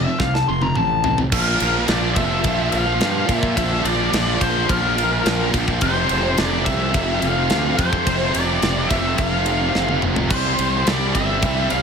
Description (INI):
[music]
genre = heavy metal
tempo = 107 BPM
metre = 4/4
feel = straight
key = unclear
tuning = A4 = 441 Hz
[part]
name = nasal lead guitar with a parked wah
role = melody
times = 0.0-11.8 s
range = Bb4 to C6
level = -22 LUFS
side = left 1 dB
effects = overdrive
[part]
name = high-gain distorted guitar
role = riff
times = 0.0-11.8 s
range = F2 to G3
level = -21 LUFS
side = right 1 dB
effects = distortion
[part]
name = fuzz fingered electric bass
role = bass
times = 0.0-11.8 s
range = F1 to Bb2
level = -24 LUFS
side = equal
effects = overdrive
[part]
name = tight metal drum kit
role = drums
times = 0.2-11.8 s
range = crash cymbal, kick drum, ride cymbal, snare drum, toms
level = -24 LUFS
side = equal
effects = none
[sound]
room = little or no reverb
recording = none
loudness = -16 LUFS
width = side -6 dB against mid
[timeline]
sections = 0.0-1.3 A section; 1.3-11.8 B section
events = lead electric guitar solo 0.0-1.3; drum fill 0.2-1.3, 9.8-10.3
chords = 0.0 F; 1.3 Bb5; 5.8 F5; 10.3 C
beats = 0.20 0.76 | 1.33 1.89 2.45 3.01 | 3.58 4.14 4.70 5.26 | 5.82 6.38 6.94 7.51 | 8.07 8.63 9.19 9.75 | 10.31 10.87 11.43